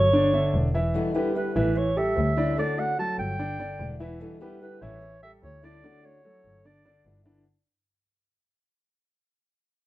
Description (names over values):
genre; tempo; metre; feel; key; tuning
latin; 147 BPM; 4/4; straight; unclear; A4 = 440 Hz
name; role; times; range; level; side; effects
breathy clarinet; melody; 0.0-7.1 s; B4 to A5; -27 LUFS; right 1 dB; none
warm grand piano; arpeggios; 0.0-7.4 s; D3 to E5; -28 LUFS; right 1 dB; none
rich double bass; bass; 0.0-7.4 s; E1 to D2; -28 LUFS; equal; none
fingerpicked old ladder-braced acoustic guitar; accompaniment; 0.9-7.5 s; B2 to F#4; -31 LUFS; left 3 dB; none
room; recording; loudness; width
moderate studio reverb, RT60 0.6 s; dark, warm production; -23 LUFS; side -16 dB against mid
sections
0.0-7.5 A section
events
fade-out 0.0-7.5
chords
0.1 G5; 0.9 Em7; 1.8 A7; 2.6 Dmaj7; 3.4 G6; 4.2 Em7; 5.0 A7; 5.8 Dmaj7; 6.6 G6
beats
0.13 0.54 | 0.95 1.35 1.76 2.17 | 2.58 2.98 3.39 3.80 | 4.21 4.61 5.02 5.43 | 5.83 6.24 6.64 7.05